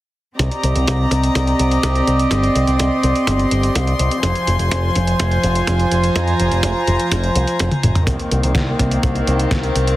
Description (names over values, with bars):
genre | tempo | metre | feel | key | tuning
italo disco | 125 BPM | 4/4 | straight | C minor | A4 = 439 Hz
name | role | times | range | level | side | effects
rich chamber string section | sustained chords | 0.4-10.0 s | Eb3 to C6 | -18 LUFS | equal | none
picked electric bass with an envelope filter | bass | 0.4-9.9 s | F1 to F2 | -18 LUFS | equal | low-pass filter
detuned 8-bit digital drum machine | drums | 0.4-10.0 s | hi-hat, snare drum, toms | -23 LUFS | equal | none
kick drum | drums | 0.4-9.6 s | none | -22 LUFS | equal | high-pass filter on kick, high-pass filter on snare, high-pass filter on room
room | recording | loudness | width
light reverb, studio ambience | heavily compressed radio sound, multiband compression | -14 LUFS | side -16 dB against mid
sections
0.4-8.1 A section; 8.1-10.0 B section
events
drum fill 7.7-8.1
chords
0.4 Cm7; 4.2 Fm; 8.1 Cm7